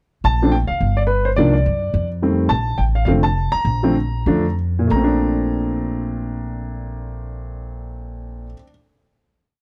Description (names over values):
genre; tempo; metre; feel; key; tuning
jazz; 179-213 BPM; 4/4; swing 62% on 8ths; Bb major; A4 = 441 Hz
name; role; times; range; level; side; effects
warm grand piano; melody; 0.2-8.7 s; Bb2 to Bb5; -22 LUFS; equal; none
upright bass; bass; 0.2-8.5 s; F1 to Gb2; -23 LUFS; equal; none
room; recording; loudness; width
small room ambience; dry, close 1970s-style studio recording; -19 LUFS; mono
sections
0.3-4.9 A section; 4.9-7.6 final chord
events
slowing down 2.5-4.9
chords
0.3 Bbmaj7(no3); 0.8 G; 1.4 Cm11; 1.9 F9; 2.5 Bbmaj7; 4.9 Bbmaj9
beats
| 0.25 0.54 0.82 1.10 | 1.38 1.66 1.94 2.23 | 2.51 2.79 3.07 3.36 | 3.66 3.96 4.26 4.58 | 4.91 5.24 5.57 5.91 | 6.24 6.58 6.91 7.24